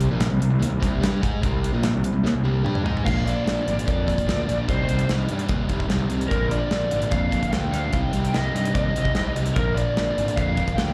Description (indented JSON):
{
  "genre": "classic rock",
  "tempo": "148 BPM",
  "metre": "4/4",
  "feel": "straight",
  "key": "C minor",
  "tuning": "A4 = 440 Hz",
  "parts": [
    { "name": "overdriven semi-hollow guitar", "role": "riff", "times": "0.0-10.9 s", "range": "Bb2 to Ab4", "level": "-28 LUFS", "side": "equal", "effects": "spring reverb, slapback echo" },
    { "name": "fuzz picked electric bass", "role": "bass", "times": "0.0-10.9 s", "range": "Ab1 to Ab2", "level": "-28 LUFS", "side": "equal", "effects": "overdrive" },
    { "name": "damped 70s drum kit", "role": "drums", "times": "0.0-10.9 s", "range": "crash cymbal, hi-hat, kick drum, snare drum, toms", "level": "-29 LUFS", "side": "equal", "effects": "none" },
    { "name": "lead guitar through a small cranked amp", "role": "melody", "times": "3.1-10.9 s", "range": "Bb4 to G5", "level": "-29 LUFS", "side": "equal", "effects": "overdrive, slapback echo, analog delay" }
  ],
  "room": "light reverb",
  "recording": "live gig heard through the venue's PA, club reverb",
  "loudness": "-23 LUFS",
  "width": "mono",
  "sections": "0.0-3.0 A section; 3.0-10.9 B section",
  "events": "drum fill 2.2-3.0",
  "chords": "0.0 Cm; 3.0 Bb; 4.7 Cm; 6.3 Bb; 7.9 Cm; 9.6 Bb"
}